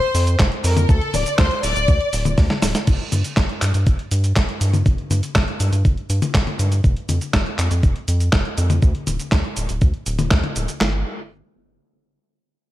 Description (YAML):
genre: italo disco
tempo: 121 BPM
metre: 4/4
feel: straight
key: unclear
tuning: A4 = 440 Hz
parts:
  - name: warm studio violin section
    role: melody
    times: 0.0-2.3 s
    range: A4 to D5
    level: -22 LUFS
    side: left 2 dB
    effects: tape echo
  - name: dusty soul sampler-style drum kit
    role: drums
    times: 0.0-10.8 s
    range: cabasa, crash cymbal, handclaps, hi-hat, snare drum, toms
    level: -23 LUFS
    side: left 1 dB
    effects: studio reverb, gated reverb
  - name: round analog bass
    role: bass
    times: 0.1-11.0 s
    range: D1 to G2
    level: -20 LUFS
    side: equal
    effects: tube saturation
  - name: dusty soul sampler-style drum kit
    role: drums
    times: 0.4-10.9 s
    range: handclaps, kick drum, snare drum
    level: -17 LUFS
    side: equal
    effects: studio reverb
room: little or no reverb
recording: none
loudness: -16 LUFS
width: side -15 dB against mid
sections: 0.0-2.9 A section; 2.9-10.8 B section; 10.8-12.7 C section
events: drum fill 2.4-2.9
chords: 0.0 F5; 0.9 D5; 2.9 N.C.